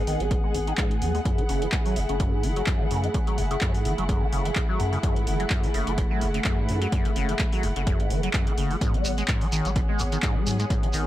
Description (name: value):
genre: acid house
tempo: 127 BPM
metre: 4/4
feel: swing 55% on 16ths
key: unclear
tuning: A4 = 442 Hz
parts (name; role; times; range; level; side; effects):
- warm analog pad; sustained chords; 0.0-11.1 s; G#4 to C#5; -34 LUFS; equal; chorus, sidechain pumping
- liquid acid bass; riff; 0.0-11.1 s; F#1 to G#3; -30 LUFS; equal; phaser, overdrive, analog chorus, sidechain pumping, ping-pong delay
- muted studio string section; texture; 0.0-11.1 s; A3 to F#5; -33 LUFS; equal; sidechain pumping
- saturated sub bass; bass; 0.1-11.1 s; F#1 to G#2; -28 LUFS; equal; sidechain pumping
- booming analog drum machine; drums; 0.1-11.0 s; handclaps, hi-hat; -33 LUFS; equal; none
- electronic kick drum; drums; 0.3-10.8 s; none; -25 LUFS; equal; overdrive
- shekere; percussion; 8.8-11.0 s; none; -34 LUFS; right 1 dB; none
room: light reverb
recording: dark, warm production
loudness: -22 LUFS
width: side -14 dB against mid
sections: 0.0-11.1 A section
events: filter sweep on acid bass 0.0-11.1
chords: 0.0 G#m7; 1.3 F#m7; 8.8 G#m7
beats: 0.31 0.78 | 1.25 1.73 2.20 2.67 | 3.15 3.62 4.09 4.56 | 5.03 5.51 5.98 6.45 | 6.92 7.40 7.87 8.34 | 8.81 9.29 9.76 10.23 | 10.70